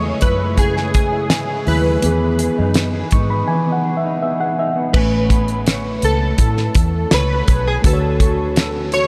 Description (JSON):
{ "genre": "indie pop, bedroom pop", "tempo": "83 BPM", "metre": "4/4", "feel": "straight", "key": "unclear", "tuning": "A4 = 440 Hz", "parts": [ { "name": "chorused retro synth keys", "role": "melody", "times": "0.0-9.1 s", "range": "G#4 to C#5", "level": "-24 LUFS", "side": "equal", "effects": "ensemble chorus, tape echo" }, { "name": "mellow electric guitar", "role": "accompaniment", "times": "0.0-9.1 s", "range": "C#3 to C#5", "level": "-25 LUFS", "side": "equal", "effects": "ensemble chorus, warbly pitch drift" }, { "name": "reed electric piano", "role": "accompaniment", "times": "0.0-9.1 s", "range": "D#3 to C#6", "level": "-26 LUFS", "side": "equal", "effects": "cassette tape" }, { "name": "vintage muted fingered electric bass", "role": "bass", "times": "0.0-9.1 s", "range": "A1 to A2", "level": "-23 LUFS", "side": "equal", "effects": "none" }, { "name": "damped 70s drum kit", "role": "drums", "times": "0.2-9.1 s", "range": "crash cymbal, hi-hat, kick drum, snare drum", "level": "-21 LUFS", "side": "equal", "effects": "none" } ], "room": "moderate huge ambient reverb, RT60 8.4 s", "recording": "dreamy mix soaked in reverb", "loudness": "-17 LUFS", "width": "mono", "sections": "0.0-4.9 A section; 4.9-9.1 B section", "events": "reed electric piano fill 2.8-4.9", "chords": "0.0 F#m9; 2.0 Emaj7; 4.9 Amaj9; 7.8 Dmaj7" }